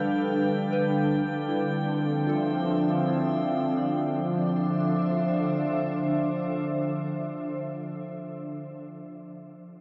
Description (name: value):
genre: ambient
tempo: free time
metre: none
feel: none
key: D dorian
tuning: A4 = 442 Hz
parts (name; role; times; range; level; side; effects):
- glassy FM pad; sustained chords; 0.0-7.6 s; D3 to F5; -28 LUFS; equal; ensemble chorus, built-in reverb
- soft synth bell; arpeggios; 0.0-9.4 s; E4 to E6; -41 LUFS; equal; none
- organ-like drone; drone; 0.0-7.5 s; D3; -37 LUFS; equal; ensemble chorus, built-in reverb
- drifting glass-harmonics texture; texture; 0.0-3.8 s; G5; -40 LUFS; equal; chorus, built-in reverb
room: wet huge ambient reverb, RT60 8.3 s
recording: dark, warm production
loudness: -27 LUFS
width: mono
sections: 0.0-3.8 A section; 3.8-6.9 B section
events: none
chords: 0.0 G7; 0.6 Dm7